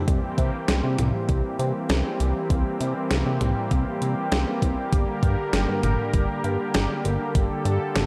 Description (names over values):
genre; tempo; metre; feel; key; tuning
synth-pop; 99 BPM; 4/4; straight; unclear; A4 = 441 Hz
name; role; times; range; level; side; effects
brassy analog pad; sustained chords; 0.0-8.1 s; D3 to Bb4; -29 LUFS; equal; chorus
chorused synth bass; bass; 0.1-8.1 s; G1 to C3; -27 LUFS; equal; none
clean 12-bit digital drum machine; drums; 0.1-8.1 s; hi-hat, kick drum, snare drum, toms; -27 LUFS; equal; overdrive
room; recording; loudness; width
light reverb, digital ambience; dark, warm production; -24 LUFS; mono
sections
0.1-8.1 A section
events
none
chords
0.1 C7; 4.9 Gm